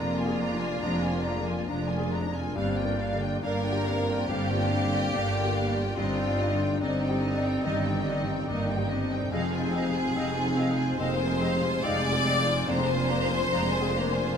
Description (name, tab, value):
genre	cinematic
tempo	71 BPM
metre	4/4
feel	rubato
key	F dorian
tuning	A4 = 440 Hz
part	clear symphonic violin section	melody	0.0-14.4 s	Eb5 to Bb5	-37 LUFS	left 2 dB	none
part	clear clarinet	second line	0.0-14.1 s	Bb3 to C4	-37 LUFS	left 2 dB	none
part	clear symphonic violin section	second line	0.0-14.4 s	Eb4 to D5	-31 LUFS	left 2 dB	none
part	mellow hollow silver concert flute	second line	0.0-14.0 s	D5 to Eb5	-37 LUFS	equal	none
part	rich symphonic viola section	accompaniment	0.0-14.4 s	G3 to F4	-36 LUFS	right 3 dB	none
part	warm grand piano	accompaniment	0.0-14.4 s	F2 to D5	-34 LUFS	left 3 dB	none
part	mellow French horn section	sustained chords	0.0-14.4 s	G3 to Eb4	-34 LUFS	left 4 dB	none
part	clear studio double bass section	bass	0.0-14.3 s	F1 to G1	-32 LUFS	right 3 dB	none
part	rich studio cello section	bass	0.0-14.3 s	F2 to G2	-33 LUFS	right 3 dB	none
room	moderate scoring stage reverb, RT60 1.6 s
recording	close, detailed microphones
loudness	-25 LUFS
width	side -7 dB against mid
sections	0.0-14.4 A section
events	none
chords	0.0 Bb7/F; 2.6 Gm7; 6.0 Cmadd9/G; 9.3 Fm7; 12.7 Bb7/F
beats	0.82 1.68 | 2.55 3.42 4.28 5.13 | 5.97 6.81 7.64 8.48 | 9.32 10.15 10.99 11.84 | 12.68 13.52